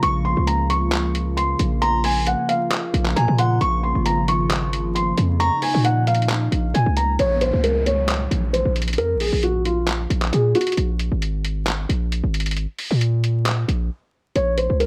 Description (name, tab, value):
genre	hip hop, trap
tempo	134 BPM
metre	4/4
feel	half-time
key	Bb minor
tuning	A4 = 437 Hz
part	felt-muted upright piano	melody	0.0-10.7, 14.4-14.9 s	F4 to Db6	-24 LUFS	equal	low-pass filter
part	delicate synth tine bell	second line	0.0-5.8 s	Bb5 to Db6	-32 LUFS	equal	chorus, tape echo
part	hollow soft pad	sustained chords	0.0-7.2 s	Db3 to F4	-28 LUFS	equal	chorus
part	hard-hitting 808-style bass	bass	0.0-14.9 s	Ab1 to Bb2	-23 LUFS	equal	none
part	lo-fi sampler-style drum kit	drums	0.0-14.9 s	handclaps, hi-hat	-28 LUFS	equal	overdrive
part	downlifter	sound effects	7.2-10.8 s	none	-35 LUFS	equal	none
room	light reverb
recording	vinyl crackle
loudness	-21 LUFS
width	mono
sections	0.0-7.2 A section; 7.2-14.9 B section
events	filter sweep on felt piano 7.2-14.9; break 10.8-14.4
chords	0.0 Bbm; 10.8 Absus2; 14.4 Bbm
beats	| 0.03 0.47 0.92 1.37 | 1.82 2.27 2.71 3.16 | 3.61 4.06 4.50 4.95 | 5.40 5.85 6.30 6.74 | 7.19 7.64 8.09 8.53 | 8.98 9.43 9.88 10.33 | 10.77 11.22 11.67 12.12 | 12.56 13.01 13.46 13.91 | 14.36 14.80